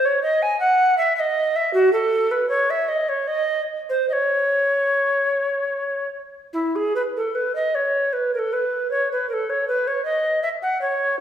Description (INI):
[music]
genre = classical, baroque-style fantasia for unaccompanied recorder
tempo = 71-80 BPM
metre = 3/4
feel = rubato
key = C# minor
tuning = A4 = 441 Hz
[part]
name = mellow tenor recorder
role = solo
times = 0.0-11.2 s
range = E4 to G#5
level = -19 LUFS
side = equal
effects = none
[sound]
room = wet recital hall reverb, RT60 1.5 s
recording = recorded in a church or concert hall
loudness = -19 LUFS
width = side -9 dB against mid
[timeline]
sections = 0.0-6.5 A section; 6.5-11.2 A section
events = none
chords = none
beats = 0.22 0.98 | 1.75 2.51 3.29 | 4.09 4.90 5.70 | 6.54 7.34 8.12 | 8.89 9.66 10.43